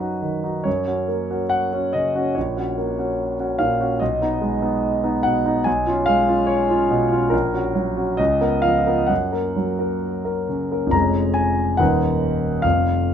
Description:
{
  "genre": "classical, romantic character piece for solo piano",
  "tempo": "64-73 BPM",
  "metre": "2/4",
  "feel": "rubato",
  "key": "F# major",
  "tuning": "A4 = 440 Hz",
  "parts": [
    { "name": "clear concert grand piano", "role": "solo", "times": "0.0-13.1 s", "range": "D#1 to A#5", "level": "-18 LUFS", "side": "equal", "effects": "none" }
  ],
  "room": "light reverb",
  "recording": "close, detailed microphones",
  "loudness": "-18 LUFS",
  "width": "side -8 dB against mid",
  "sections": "0.0-10.9 A section; 10.9-13.1 B section",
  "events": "none",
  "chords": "0.0 B/F#; 0.7 F#; 2.4 F#/A#; 4.0 G#m/B; 5.7 C#7/B; 7.3 F#/A#; 8.2 C#13; 9.1 F#; 10.9 C#/E#; 11.8 B/D#",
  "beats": "| 0.66 1.51 | 2.36 3.19 | 4.00 4.84 | 5.66 6.49 | 7.33 8.19 | 9.10 10.03 | 10.94 11.80 | 12.64"
}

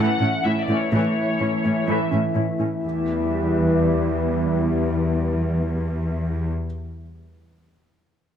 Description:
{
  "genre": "cinematic",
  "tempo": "126 BPM",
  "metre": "4/4",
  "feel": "straight",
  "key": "E dorian",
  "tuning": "A4 = 438 Hz",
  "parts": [
    { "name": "rich symphonic violin section", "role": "melody", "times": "0.0-6.5 s", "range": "C#5 to F#5", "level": "-29 LUFS", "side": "left 4 dB", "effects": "low-pass filter" },
    { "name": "rich symphonic viola section", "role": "accompaniment", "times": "0.0-6.5 s", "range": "E3 to G4", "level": "-28 LUFS", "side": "equal", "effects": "low-pass filter" },
    { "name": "warbly tape-like pad", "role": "sustained chords", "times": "0.0-6.5 s", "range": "E3 to E5", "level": "-24 LUFS", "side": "equal", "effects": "chorus, built-in reverb, low-pass filter" },
    { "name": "warbly dusty pluck", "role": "arpeggios", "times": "0.0-2.7 s", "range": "A3 to A4", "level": "-30 LUFS", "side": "right 4 dB", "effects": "none" },
    { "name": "rich symphonic cello section", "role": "bass", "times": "0.0-6.5 s", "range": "E2 to A2", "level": "-24 LUFS", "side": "equal", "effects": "none" },
    { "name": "felt-muted upright piano", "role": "texture", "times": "0.0-2.9 s", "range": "C#4 to E5", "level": "-38 LUFS", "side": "left 2 dB", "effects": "none" }
  ],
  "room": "moderate scoring stage reverb, RT60 1.6 s",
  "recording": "none",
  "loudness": "-20 LUFS",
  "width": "side -9 dB against mid",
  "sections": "0.0-2.8 A section; 2.8-6.6 B section",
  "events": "filter sweep 0.0-2.8",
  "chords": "0.0 A; 2.8 Em",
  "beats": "0.45 | 0.93 1.40 1.88 2.36 | 2.83 3.31 3.79 4.26 | 4.74 5.21 5.69 6.17"
}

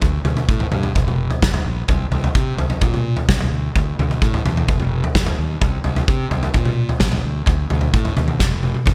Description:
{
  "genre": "indie rock",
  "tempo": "128 BPM",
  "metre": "4/4",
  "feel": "straight",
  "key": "unclear",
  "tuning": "A4 = 440 Hz",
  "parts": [
    { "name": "fuzz fingered electric bass", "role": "bass", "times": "0.0-8.9 s", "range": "F1 to C3", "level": "-24 LUFS", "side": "equal", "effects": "overdrive" },
    { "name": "loose indie drum kit", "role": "drums", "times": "0.0-8.9 s", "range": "kick drum, snare drum, toms", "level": "-20 LUFS", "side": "equal", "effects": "gated reverb" }
  ],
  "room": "light reverb",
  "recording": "bright 1980s-style digital production",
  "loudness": "-19 LUFS",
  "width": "mono",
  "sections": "0.0-8.9 A section",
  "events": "drum fill 8.4-8.9",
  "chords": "none",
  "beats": "| 0.02 0.48 0.95 1.42 | 1.89 2.35 2.82 3.29 | 3.75 4.22 4.69 5.15 | 5.62 6.09 6.55 7.02 | 7.49 7.96 8.42 8.89"
}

